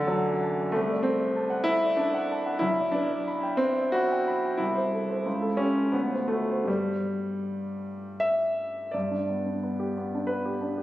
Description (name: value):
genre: classical, romantic character piece for solo piano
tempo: 74-96 BPM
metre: 3/4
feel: rubato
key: G major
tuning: A4 = 440 Hz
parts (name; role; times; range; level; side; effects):
- warm concert grand piano; solo; 0.0-10.8 s; B1 to B5; -25 LUFS; equal; none
room: moderate concert hall reverb, RT60 2.3 s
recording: recorded on a phone in the room, studio reverb, compression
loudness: -25 LUFS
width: side -15 dB against mid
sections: 0.0-8.9 A section; 8.9-10.8 A section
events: none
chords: 0.0 D/F#; 0.7 D7/C; 2.6 G/B; 4.6 Am/C; 5.3 A7/C#; 5.9 D7; 6.7 G